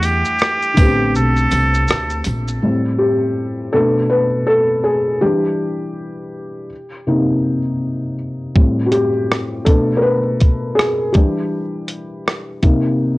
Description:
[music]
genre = lo-fi hip hop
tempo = 81 BPM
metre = 4/4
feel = swing 60% on 16ths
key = A minor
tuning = A4 = 443 Hz
[part]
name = trumpet with straight mute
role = melody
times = 0.0-2.2 s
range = G4 to A4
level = -19 LUFS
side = right 1 dB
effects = low-pass filter, analog delay, plate reverb
[part]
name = felt-muted upright piano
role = accompaniment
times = 0.0-13.2 s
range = A2 to F#5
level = -17 LUFS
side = left 1 dB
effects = cassette tape, low-pass filter
[part]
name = upright bass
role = bass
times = 0.0-2.6 s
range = A1 to E2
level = -19 LUFS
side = equal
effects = transformer saturation
[part]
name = boom bap sampler-style drum kit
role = drums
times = 0.0-2.6, 8.6-12.8 s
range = hi-hat, kick drum, rim click, shaker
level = -14 LUFS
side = equal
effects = cassette tape
[part]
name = tambourine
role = percussion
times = 0.0-2.5 s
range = none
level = -39 LUFS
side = right 4 dB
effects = none
[sound]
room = light reverb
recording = home recording on cassette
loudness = -14 LUFS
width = side -20 dB against mid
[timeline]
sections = 0.0-2.6 A section; 2.6-13.2 B section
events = felt piano solo 2.6-13.2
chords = 0.0 Em11; 0.8 Am11; 2.6 Am7; 3.7 Bm7; 5.2 Em7; 6.7 Cm7; 8.6 Am7; 9.7 Bm7; 11.2 Em7; 12.6 Cm7

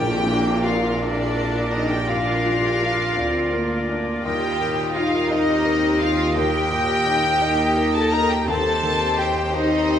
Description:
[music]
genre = cinematic, emotional film score for orchestra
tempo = 56 BPM (dotted quarters)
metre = 6/8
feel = rubato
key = Bb major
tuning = A4 = 440 Hz
[part]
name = warm studio violin section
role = melody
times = 0.0-10.0 s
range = D5 to Bb5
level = -26 LUFS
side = left 4 dB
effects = none
[part]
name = clear clarinet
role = second line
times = 0.0-10.0 s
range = G4 to Bb4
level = -29 LUFS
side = left 1 dB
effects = none
[part]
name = clear oboe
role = second line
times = 0.0-10.0 s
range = C5 to Eb5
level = -30 LUFS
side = right 3 dB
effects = none
[part]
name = concert flute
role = second line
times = 0.0-10.0 s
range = D5 to Bb5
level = -28 LUFS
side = right 1 dB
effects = none
[part]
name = warm studio violin section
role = second line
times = 0.0-10.0 s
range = D4 to Bb4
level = -29 LUFS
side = left 1 dB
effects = none
[part]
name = felt-muted upright piano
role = accompaniment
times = 0.0-10.0 s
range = Eb2 to Eb5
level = -28 LUFS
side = left 2 dB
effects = none
[part]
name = rich studio viola section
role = accompaniment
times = 0.0-10.0 s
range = G3 to G4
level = -26 LUFS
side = equal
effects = none
[part]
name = dark French horn section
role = sustained chords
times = 0.0-10.0 s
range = D4 to Bb4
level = -26 LUFS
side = left 1 dB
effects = none
[part]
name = dark studio double bass section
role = bass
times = 0.0-10.0 s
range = Bb1 to Eb2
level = -31 LUFS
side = right 2 dB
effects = none
[part]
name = warm studio cello section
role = bass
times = 0.0-10.0 s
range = D2 to Bb2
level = -30 LUFS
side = right 1 dB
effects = none
[part]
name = timpani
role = percussion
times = 0.0-1.0 s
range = Bb2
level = -35 LUFS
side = equal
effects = none
[sound]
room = wet recital hall reverb, RT60 1.4 s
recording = recorded in a church or concert hall, nothing above 10.9 kHz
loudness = -18 LUFS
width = side -9 dB against mid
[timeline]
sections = 0.0-10.0 A section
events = none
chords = 0.0 Bb; 4.2 Eb; 8.5 Cm/Eb

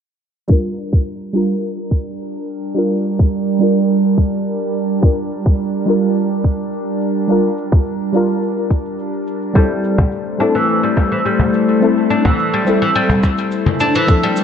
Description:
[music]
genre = organic downtempo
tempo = 106 BPM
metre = 4/4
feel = straight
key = G dorian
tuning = A4 = 440 Hz
[part]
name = deep mellow chord stab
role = accompaniment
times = 0.5-14.4 s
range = F3 to Bb4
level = -20 LUFS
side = left 1 dB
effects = chorus, sidechain pumping, ping-pong delay
[part]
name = bowed-like drone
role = sustained chords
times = 1.3-14.4 s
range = D3 to C5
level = -19 LUFS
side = right 1 dB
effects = built-in reverb, sidechain pumping
[part]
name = electronic kick drum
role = drums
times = 0.5-14.2 s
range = none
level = -13 LUFS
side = equal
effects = none
[part]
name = shaker and congas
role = drums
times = 0.5-14.4 s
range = none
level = -19 LUFS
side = left 2 dB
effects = none
[part]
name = oud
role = arpeggios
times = 9.6-14.4 s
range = E3 to D4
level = -17 LUFS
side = equal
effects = ping-pong delay
[part]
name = cajon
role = percussion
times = 10.0-13.4 s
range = none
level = -19 LUFS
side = left 1 dB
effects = none
[sound]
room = moderate plate reverb, RT60 2.3 s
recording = bright 1980s-style digital production, low-pass filter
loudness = -14 LUFS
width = side -8 dB against mid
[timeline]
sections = 0.5-14.4 A section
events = filter sweep 0.5-14.4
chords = 0.5 Gm7; 9.6 Am7

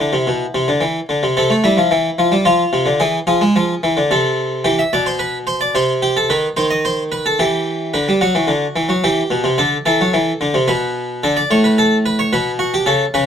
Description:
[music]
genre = classical, baroque-style two-part invention for harpsichord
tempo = 110 BPM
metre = 3/4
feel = straight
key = A minor, G major from 7.9 s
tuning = A4 = 436 Hz
[part]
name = harpsichord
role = solo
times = 0.0-13.3 s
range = A2 to E5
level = -14 LUFS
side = equal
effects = none
[sound]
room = light reverb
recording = close, detailed microphones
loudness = -14 LUFS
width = side -8 dB against mid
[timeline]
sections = 0.0-1.4 A section; 1.4-7.9 B section; 7.9-13.3 C section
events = none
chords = 0.0 E5; 1.4 Am/C; 2.5 Dm/F; 3.0 E; 4.1 Am/C; 4.7 Em; 5.7 Am/C; 6.3 B/D#; 7.4 Em; 7.9 G/D; 9.0 C/E; 9.6 D; 10.7 N.C.; 11.2 D5; 12.3 G/B

